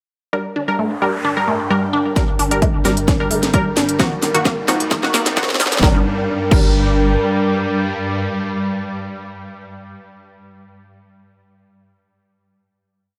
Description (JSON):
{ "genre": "driving peak-time techno", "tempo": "131 BPM", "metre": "4/4", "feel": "straight", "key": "G harmonic minor", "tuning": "A4 = 438 Hz", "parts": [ { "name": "resonant blip pluck", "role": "riff", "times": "0.3-6.6 s", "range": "Eb3 to D4", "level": "-24 LUFS", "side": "equal", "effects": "phaser, overdrive, sidechain pumping, delay" }, { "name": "filtered dub chord stab", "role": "stabs", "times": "0.3-9.9 s", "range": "Eb3 to Bb4", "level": "-24 LUFS", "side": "equal", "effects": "chorus, sidechain pumping, delay" }, { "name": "swarming drone", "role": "drone", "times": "1.3-9.3 s", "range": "G2 to G3", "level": "-27 LUFS", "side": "equal", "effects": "built-in reverb, sidechain pumping" }, { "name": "noise sweep and riser", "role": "sound effects", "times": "0.7-5.8 s", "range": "none", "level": "-32 LUFS", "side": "equal", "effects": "none" }, { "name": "airy breathy pad", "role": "texture", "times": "0.3-9.4 s", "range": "D4 to G5", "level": "-25 LUFS", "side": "equal", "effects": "chorus, sidechain pumping" }, { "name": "electronic kick drum", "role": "drums", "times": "2.2-6.7 s", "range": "none", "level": "-18 LUFS", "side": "equal", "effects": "overdrive" }, { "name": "techno drum kit", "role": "drums", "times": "2.2-6.7 s", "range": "crash cymbal, hi-hat, snare drum", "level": "-23 LUFS", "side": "equal", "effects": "overdrive" }, { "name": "saturated sub bass", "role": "bass", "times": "2.3-7.2 s", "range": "Eb1 to G1", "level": "-24 LUFS", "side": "equal", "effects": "sidechain pumping, low-pass filter" } ], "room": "light reverb", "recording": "high-pass filter", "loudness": "-17 LUFS", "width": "mono", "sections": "0.3-2.2 intro; 2.2-5.8 build; 5.8-9.5 final chord", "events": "noise sweep 0.7-2.2; build-up 2.2-5.8; drum fill 2.2-5.8; filter sweep on synth arpeggio sound 2.2-5.8; filter sweep 2.2-5.8", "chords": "0.3 Gm; 4.0 Ebm; 5.8 Gm", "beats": "| 0.33 0.79 1.25 1.71 | 2.16 2.62 3.08 3.54 | 4.00 4.45 4.91 5.37 | 5.83 6.29 6.74 7.20 | 7.66 8.12 8.57 9.03" }